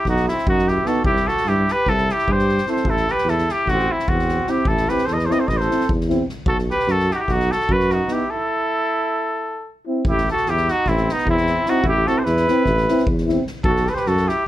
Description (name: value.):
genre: balkan folk, Balkan brass band.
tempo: 300 BPM (eighths).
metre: 9/8.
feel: straight.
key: A dorian sharp4.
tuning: A4 = 440 Hz.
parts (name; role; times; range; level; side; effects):
warm trumpet; melody; 0.0-14.5 s; D#4 to D#5; -20 LUFS; left 1 dB; plate reverb.
mellow trumpet; second line; 0.0-14.5 s; B3 to B4; -27 LUFS; right 5 dB; none.
mellow tuba; bass; 0.1-14.3 s; A1 to G2; -21 LUFS; equal; none.
soft-mallet drum kit; percussion; 0.1-14.3 s; kick drum, snare drum; -26 LUFS; equal; none.
warm euphonium; accompaniment; 0.8-13.4 s; B3 to C4; -24 LUFS; right 4 dB; none.
breathy trombone; accompaniment; 0.9-13.4 s; D#4 to E4; -25 LUFS; left 7 dB; none.
room: light reverb.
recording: none.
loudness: -17 LUFS.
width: side -14 dB against mid.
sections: 0.0-10.1 A section; 10.1-14.5 A section.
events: break 8.3-10.1.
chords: 0.0 B; 1.0 C; 2.9 Am; 6.5 B; 8.3 Am; 13.6 B5.